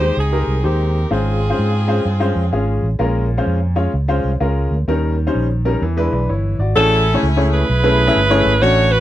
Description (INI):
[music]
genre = uptempo gospel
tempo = 128 BPM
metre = 4/4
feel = swing 64% on 8ths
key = unclear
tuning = A4 = 440 Hz
[part]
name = clear saxophone section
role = melody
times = 0.0-2.8, 6.8-9.0 s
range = C4 to C#5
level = -18 LUFS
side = right 1 dB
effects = none
[part]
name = clear upright piano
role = accompaniment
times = 0.0-9.0 s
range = Ab2 to E5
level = -19 LUFS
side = left 2 dB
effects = none
[part]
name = fingered electric bass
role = bass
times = 0.0-9.0 s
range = G1 to Ab2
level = -17 LUFS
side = right 1 dB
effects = none
[sound]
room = little or no reverb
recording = dry, close 1970s-style studio recording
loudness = -14 LUFS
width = side -13 dB against mid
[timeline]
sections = 0.0-6.8 A section; 6.8-9.0 B section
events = none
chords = 0.0 Abmaj7; 1.1 Dbmaj7/Ab; 3.0 Bbm7; 4.9 Eb7; 5.8 E7; 6.8 Amaj7